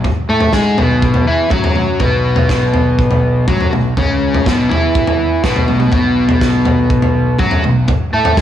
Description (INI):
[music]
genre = indie rock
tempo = 123 BPM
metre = 4/4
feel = straight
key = unclear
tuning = A4 = 440 Hz
[part]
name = fuzz fingered electric bass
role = bass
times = 0.0-8.4 s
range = B1 to A2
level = -19 LUFS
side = right 1 dB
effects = overdrive
[part]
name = loose indie drum kit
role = drums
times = 0.0-8.4 s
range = kick drum, snare drum, toms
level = -16 LUFS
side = equal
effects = none
[part]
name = crunchy overdriven guitar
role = riff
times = 0.3-8.4 s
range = B2 to A4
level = -14 LUFS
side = left 1 dB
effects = none
[sound]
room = light reverb, studio ambience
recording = none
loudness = -11 LUFS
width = side -10 dB against mid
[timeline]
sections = 0.0-8.4 A section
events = none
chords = 0.0 B5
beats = | 0.06 0.55 1.03 1.52 | 2.02 2.50 2.99 3.48 | 3.97 4.46 4.95 5.44 | 5.93 6.42 6.91 7.40 | 7.89 8.38